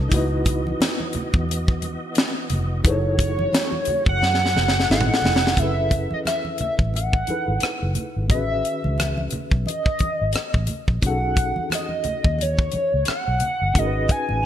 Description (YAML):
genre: R&B, neo-soul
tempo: 88 BPM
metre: 4/4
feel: swing 58% on 16ths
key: F# dorian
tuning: A4 = 441 Hz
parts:
  - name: reed electric piano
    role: accompaniment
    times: 0.0-14.5 s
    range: D#3 to D#5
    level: -30 LUFS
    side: left 1 dB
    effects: fast tremolo
  - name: tonewheel organ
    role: sustained chords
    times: 0.0-5.5 s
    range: E3 to D#5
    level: -33 LUFS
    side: right 1 dB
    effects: slow rotary speaker, chorus vibrato
  - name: vintage muted fingered electric bass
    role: bass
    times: 0.0-14.5 s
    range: E#1 to F#2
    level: -24 LUFS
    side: equal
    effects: none
  - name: tight funk drum kit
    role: drums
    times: 0.1-14.3 s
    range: hi-hat, kick drum, rim click, snare drum, toms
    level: -21 LUFS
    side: equal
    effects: gated reverb
  - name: congas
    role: percussion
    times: 0.1-14.5 s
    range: none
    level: -33 LUFS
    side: right 1 dB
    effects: none
  - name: hollow square lead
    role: melody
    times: 2.9-14.5 s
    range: C#5 to G#5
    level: -24 LUFS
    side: equal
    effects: chorus
room: light reverb, small room ambience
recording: bright 1980s-style digital production, lossy compression artefacts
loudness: -19 LUFS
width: side -10 dB against mid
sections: 0.0-5.6 A section; 5.6-14.5 B section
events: drum fill 4.2-5.6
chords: 0.1 C#m11; 2.8 F#m9; 5.6 F#m11; 8.3 Amaj9#11; 11.0 B9; 13.8 G#m7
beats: | 0.12 0.80 1.48 2.16 | 2.85 3.53 4.21 4.89 | 5.57 6.25 6.94 7.62 | 8.30 8.98 9.66 10.35 | 11.03 11.71 12.39 13.07 | 13.76 14.44